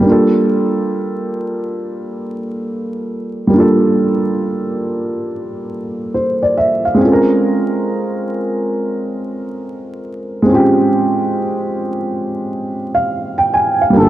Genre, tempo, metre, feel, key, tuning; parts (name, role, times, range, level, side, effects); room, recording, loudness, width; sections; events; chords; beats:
lo-fi hip hop; 69 BPM; 4/4; swing 65% on 16ths; A4 = 440 Hz
dark upright piano; accompaniment; 0.0-14.1 s; G3 to Ab5; -14 LUFS; right 1 dB; low-pass filter
breathy flugelhorn; melody; 14.0-14.1 s; A4; -15 LUFS; equal; low-pass filter
mellow tuba; bass; 14.0-14.1 s; G1; -17 LUFS; equal
moderate plate reverb, RT60 2.8 s; dark, warm production, vinyl crackle; -14 LUFS; side -13 dB against mid
0.0-14.0 A section
0.0 Gm9; 7.0 Bbm9
| 0.04 0.91 1.78 2.65 | 3.52 4.39 5.26 6.13 | 7.00 7.87 8.74 9.61 | 10.48 11.35 12.22 13.09 | 13.96